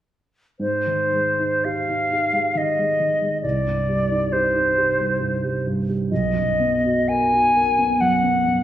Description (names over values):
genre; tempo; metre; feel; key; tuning
classical, impressionist duo for flute and grand piano; 55-70 BPM; 3/4; rubato; Ab lydian; A4 = 439 Hz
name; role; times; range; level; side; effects
silver concert flute; melody; 0.6-8.6 s; C5 to Ab5; -19 LUFS; left 1 dB; none
dark concert grand piano; accompaniment; 0.6-8.6 s; B1 to A#4; -23 LUFS; right 2 dB; none
room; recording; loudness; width
wet recital hall reverb, RT60 1.3 s; heard from further back in the room; -18 LUFS; side -12 dB against mid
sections
0.6-8.6 A section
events
none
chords
0.6 Abmaj7; 3.4 Cm; 6.1 Bmaj7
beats
| 0.60 1.65 2.57 | 3.44 4.32 5.21 | 6.11 7.08 8.00